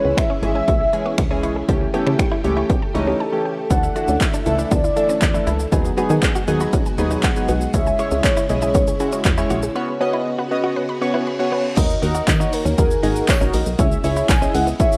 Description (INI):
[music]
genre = dance-pop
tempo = 119 BPM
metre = 4/4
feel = straight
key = unclear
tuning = A4 = 441 Hz
[part]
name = warm velvety synth lead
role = melody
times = 0.0-15.0 s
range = A4 to G#5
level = -25 LUFS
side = equal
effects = chorus
[part]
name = chorused retro synth keys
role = accompaniment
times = 0.0-15.0 s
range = E3 to D#5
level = -26 LUFS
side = equal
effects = sidechain pumping
[part]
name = string machine, violins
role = sustained chords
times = 0.0-15.0 s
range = B2 to G4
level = -32 LUFS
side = equal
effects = ensemble chorus, sidechain pumping
[part]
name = direct-recorded clean electric guitar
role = riff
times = 0.0-14.8 s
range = G#3 to F#4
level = -30 LUFS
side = equal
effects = lush chorus
[part]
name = plucky analog bass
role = bass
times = 0.0-14.7 s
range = G#1 to D#3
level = -25 LUFS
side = equal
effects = sidechain pumping
[part]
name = unison pluck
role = arpeggios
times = 0.2-11.6 s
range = E4 to C#6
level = -34 LUFS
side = equal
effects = sidechain pumping, tape echo
[part]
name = punchy analog drum machine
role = drums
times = 0.2-15.0 s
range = crash cymbal, finger snaps, handclaps, hi-hat, kick drum, shaker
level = -22 LUFS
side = equal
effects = none
[part]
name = reverse cymbal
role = sound effects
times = 11.0-11.8 s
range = none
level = -37 LUFS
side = equal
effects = none
[part]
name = tambourine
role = percussion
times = 12.3-14.4 s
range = none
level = -40 LUFS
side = equal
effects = none
[sound]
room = light reverb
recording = rough home demo mix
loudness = -19 LUFS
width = mono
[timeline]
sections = 0.0-11.8 A section; 11.8-15.0 B section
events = break 3.2-3.7; reverse cymbal 11.0-11.8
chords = 0.0 C#m; 1.7 A7/C#; 3.7 Dsus2; 5.7 G#m7/D#; 7.7 C#m; 9.8 Bsus2; 11.8 D#m; 13.8 C#m